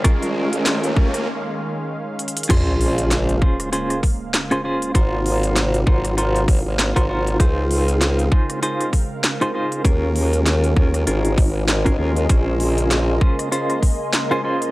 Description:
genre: glitch hop.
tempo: 98 BPM.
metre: 4/4.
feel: swing 57% on 16ths.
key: Bb minor.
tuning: A4 = 440 Hz.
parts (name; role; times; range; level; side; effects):
warm analog pad; sustained chords; 0.0-14.7 s; C3 to F5; -29 LUFS; equal; chorus, vintage 12-bit sampler grit, sidechain pumping.
clean electric guitar; stabs; 0.0-14.7 s; Db4 to C5; -23 LUFS; equal; tremolo, sidechain pumping, tape echo.
formant-sweep wobble bass; bass; 0.0-13.2 s; Ab1 to Eb2; -20 LUFS; equal; chorus, high-pass filter.
drum and bass drum kit; drums; 0.0-14.7 s; crash cymbal, hi-hat, rim click, snare drum; -23 LUFS; equal; none.
electronic kick drum; drums; 0.0-14.0 s; none; -16 LUFS; equal; none.
riser and sub drop; sound effects; 0.0-4.9 s; none; -28 LUFS; equal; none.
ethereal airy pad; texture; 0.0-1.3, 8.3-14.7 s; Bb4 to C6; -30 LUFS; right 1 dB; ensemble chorus, built-in reverb, sidechain pumping.
room: digital ambience.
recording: dry, gritty hardware recording.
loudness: -17 LUFS.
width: side -19 dB against mid.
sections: 0.0-2.5 A section; 2.5-14.7 B section.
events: build-up 0.0-2.5; riser 0.0-1.3; break 1.3-2.5; drum fill 2.2-2.5; drop 2.5-14.7; impact 2.5-4.9.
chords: 0.1 Eb9sus4; 2.5 Bbm7; 4.9 Ab13; 7.4 Dbmaj7; 9.8 Eb9sus4; 12.3 Bbm7.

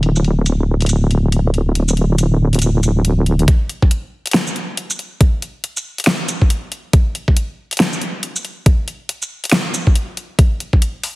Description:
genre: deep dubstep.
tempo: 139 BPM.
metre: 4/4.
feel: swing 60% on 16ths, half-time.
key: unclear.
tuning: A4 = 442 Hz.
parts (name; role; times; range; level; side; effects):
wobble bass; bass; 0.0-3.5 s; D1; -13 LUFS; equal; chorus.
dubstep drum kit; drums; 0.0-11.1 s; hi-hat, shaker, snare drum; -19 LUFS; equal; overdrive, low-pass filter on hats, studio reverb, low-pass filter on perc, low-pass filter on snare.
electronic kick drum; drums; 3.5-10.8 s; none; -12 LUFS; equal; overdrive, studio reverb.
room: light reverb.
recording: heavily compressed radio sound, multiband compression.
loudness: -14 LUFS.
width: side -20 dB against mid.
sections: 0.0-3.5 A section; 3.5-11.2 B section.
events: build-up 3.5-11.2.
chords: none.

